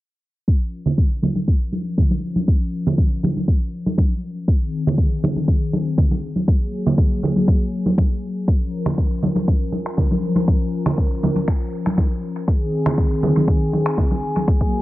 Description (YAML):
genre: afro house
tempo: 120 BPM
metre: 4/4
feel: straight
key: Bb minor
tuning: A4 = 441 Hz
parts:
  - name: warm analog pad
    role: sustained chords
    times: 0.5-14.8 s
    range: Eb3 to Bb4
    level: -24 LUFS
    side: left 2 dB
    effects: chorus, vintage 12-bit sampler grit, sidechain pumping
  - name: electronic kick drum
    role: drums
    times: 0.5-14.7 s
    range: none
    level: -17 LUFS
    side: equal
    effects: none
  - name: congas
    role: percussion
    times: 0.9-14.5 s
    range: none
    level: -22 LUFS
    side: right 1 dB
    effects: none
  - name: electronic finger snaps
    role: drums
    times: 8.9-14.0 s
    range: none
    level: -32 LUFS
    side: equal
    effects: tape echo
room: light reverb, digital ambience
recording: echo-heavy mix, low-pass filter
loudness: -17 LUFS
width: side -17 dB against mid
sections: 0.5-14.8 A section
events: filter sweep on analog synth pad 0.5-14.8; filter sweep 0.5-14.8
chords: 0.5 Bbm; 4.5 Ab; 6.5 Gbadd9; 8.5 Bbm; 12.5 Ab